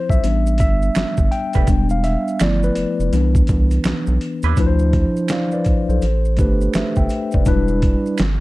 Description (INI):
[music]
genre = R&B, neo-soul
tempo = 83 BPM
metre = 4/4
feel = swing 63% on 16ths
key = D dorian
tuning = A4 = 440 Hz
[part]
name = mellow tine electric piano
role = accompaniment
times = 0.0-8.2 s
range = E3 to G5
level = -20 LUFS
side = moving between left 5 dB and right 2 dB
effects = auto-pan
[part]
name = round analog bass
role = bass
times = 0.1-8.4 s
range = E1 to Eb2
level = -18 LUFS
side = equal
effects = none
[part]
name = boom bap sampler-style drum kit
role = drums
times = 0.1-8.4 s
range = hi-hat, kick drum, snare drum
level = -19 LUFS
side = equal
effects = overdrive
[part]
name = maracas and finger snaps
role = percussion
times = 0.1-8.4 s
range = none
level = -34 LUFS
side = right 8 dB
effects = none
[part]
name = electric guitar through a small old amp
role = second line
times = 1.5-4.6 s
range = G3 to B4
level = -25 LUFS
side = right 13 dB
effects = wah
[sound]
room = little or no reverb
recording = dark, warm production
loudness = -15 LUFS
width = side -19 dB against mid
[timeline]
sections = 0.0-4.6 A section; 4.6-8.4 B section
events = tine electric piano solo 0.0-4.6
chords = 0.2 A9sus4; 1.7 Em7; 2.4 G13; 3.1 Cmaj9; 4.6 Dm9; 6.0 A9sus4; 7.5 Em7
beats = 0.23 0.96 | 1.68 2.40 3.13 3.85 | 4.57 5.29 6.02 6.74 | 7.46 8.19